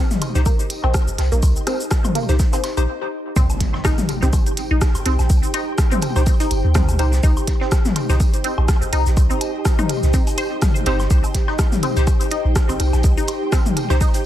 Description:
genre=minimal techno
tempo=124 BPM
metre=4/4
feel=swing 56% on 16ths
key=C minor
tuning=A4 = 440 Hz
part: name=ethereal airy pad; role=texture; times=0.0-14.3 s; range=Eb4 to G5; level=-28 LUFS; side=equal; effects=ensemble chorus, built-in reverb, sidechain pumping
part: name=crunchy breakbeat drum kit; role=drums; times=0.1-14.2 s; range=hi-hat, snare drum, tambourine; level=-38 LUFS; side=equal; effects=sidechain pumping on hats, high-pass filter on hats, high-pass filter on snare, sidechain pumping on perc, high-pass filter on perc, high-pass filter on room, analog delay
part: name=minimal click drum kit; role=drums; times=0.1-14.2 s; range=cabasa, hi-hat, rim click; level=-26 LUFS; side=equal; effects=overdrive, analog delay
part: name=electronic toms and woodblock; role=percussion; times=0.1-14.0 s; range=none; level=-26 LUFS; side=left 3 dB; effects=tape echo
part: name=wavetable chord stab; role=stabs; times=0.4-14.0 s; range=Eb4 to C5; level=-27 LUFS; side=left 2 dB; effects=phaser, analog delay
part: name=punchy sub bass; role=bass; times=0.4-14.0 s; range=G1 to Eb2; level=-18 LUFS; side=equal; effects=sidechain pumping
part: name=resonant blip pluck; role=riff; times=0.5-14.1 s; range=Bb3 to C5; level=-27 LUFS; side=left 1 dB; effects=phaser, sidechain pumping, tape echo
part: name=electronic kick drum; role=drums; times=0.5-14.1 s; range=none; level=-18 LUFS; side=equal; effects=overdrive
part: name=impact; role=sound effects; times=3.4-5.3 s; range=none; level=-29 LUFS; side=equal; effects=none
part: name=flickering grainy texture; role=texture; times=3.8-14.3 s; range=G4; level=-34 LUFS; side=right 2 dB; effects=none
room=little or no reverb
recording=echo-heavy mix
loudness=-16 LUFS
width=side -12 dB against mid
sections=0.0-3.4 A section; 3.4-14.3 B section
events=break 2.9-3.4; drop 3.4-14.3; impact 3.4-5.3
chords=0.0 Cm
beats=0.46 0.94 | 1.43 1.91 2.40 2.88 | 3.36 3.85 4.33 4.82 | 5.30 5.78 6.27 6.75 | 7.24 7.72 8.20 8.69 | 9.17 9.65 10.14 10.62 | 11.11 11.59 12.07 12.56 | 13.04 13.53 14.01

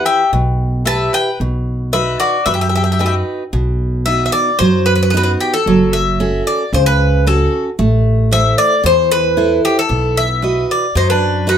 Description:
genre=greek folk, Greek bouzouki band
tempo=113 BPM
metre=4/4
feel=straight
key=unclear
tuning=A4 = 440 Hz
part: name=Greek bouzouki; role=melody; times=0.0-11.6 s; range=G4 to A5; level=-15 LUFS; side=left 1 dB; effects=none
part: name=mandolin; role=second line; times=0.0-3.1, 11.0-11.6 s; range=D4 to E5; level=-20 LUFS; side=left 4 dB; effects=none
part: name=picked steel-string acoustic guitar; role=accompaniment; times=0.0-11.6 s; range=B2 to D#5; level=-18 LUFS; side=right 3 dB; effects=none
part: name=upright bass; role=bass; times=0.3-11.6 s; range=F#1 to F#2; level=-17 LUFS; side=equal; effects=none
room=moderate small room reverb, RT60 0.5 s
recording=none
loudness=-12 LUFS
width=side -8 dB against mid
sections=0.0-3.5 A section; 3.5-11.6 A section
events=none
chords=0.0 Em; 1.4 B; 5.7 F#m; 7.8 Am; 9.9 B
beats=0.33 0.86 | 1.40 1.93 2.47 3.00 | 3.54 4.07 4.60 5.13 | 5.66 6.20 6.73 7.25 | 7.79 8.31 8.84 9.37 | 9.90 10.42 10.95 11.48

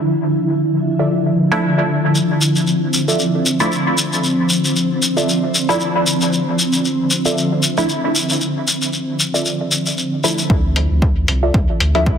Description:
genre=dub techno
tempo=115 BPM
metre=4/4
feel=swing 56% on 16ths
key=D minor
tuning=A4 = 440 Hz
part: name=granular cloud pad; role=sustained chords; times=0.0-10.5 s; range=D3 to E4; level=-18 LUFS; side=equal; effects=built-in reverb, sidechain pumping
part: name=warbly dusty pluck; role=riff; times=1.0-11.5 s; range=F4 to E5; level=-24 LUFS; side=right 2 dB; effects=chorus, sidechain pumping, dub echo
part: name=filtered dub chord stab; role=stabs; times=1.5-12.0 s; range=F3 to E4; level=-21 LUFS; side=right 1 dB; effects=chorus, phaser, sidechain pumping, dub echo
part: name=shekere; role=percussion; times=2.1-10.5 s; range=none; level=-19 LUFS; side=left 2 dB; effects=none
part: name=pure sine sub bass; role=bass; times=10.5-12.2 s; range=C2 to D2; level=-17 LUFS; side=equal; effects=sidechain pumping
part: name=electronic kick drum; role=drums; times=10.5-12.2 s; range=none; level=-16 LUFS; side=equal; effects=overdrive
part: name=electronic hi-hat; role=drums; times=10.8-12.0 s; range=none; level=-19 LUFS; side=left 1 dB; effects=none
room=moderate lush hall reverb, RT60 1.9 s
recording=dense, heavily limited modern master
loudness=-14 LUFS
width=side -7 dB against mid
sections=0.0-10.5 A section; 10.5-12.2 B section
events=filter sweep on ambient pad 0.0-10.5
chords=0.0 Dmadd9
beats=| 0.07 0.59 1.11 1.63 | 2.15 2.67 3.19 3.72 | 4.24 4.76 5.28 5.80 | 6.33 6.85 7.37 7.89 | 8.41 8.94 9.46 9.98 | 10.50 11.02 11.54 12.06

